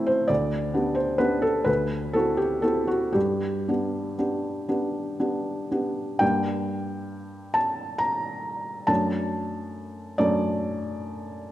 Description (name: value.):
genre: classical, romantic nocturne for solo piano.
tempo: 38-46 BPM (dotted quarters).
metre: 6/8.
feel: rubato.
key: G major, G minor from 6.2 s.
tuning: A4 = 441 Hz.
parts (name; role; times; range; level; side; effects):
felt-muted upright piano; solo; 0.0-11.5 s; D2 to Bb5; -24 LUFS; equal; none.
room: moderate scoring stage reverb, RT60 1.8 s.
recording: dark, warm production.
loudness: -23 LUFS.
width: side -14 dB against mid.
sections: 0.0-6.2 A section; 6.2-11.5 B section.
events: none.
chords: 0.3 G/D; 1.7 D9; 3.2 G; 6.2 Gm; 8.9 D/F#.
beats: | 0.29 1.68 | 3.15 4.69 | 6.21 7.56 | 8.89 10.21.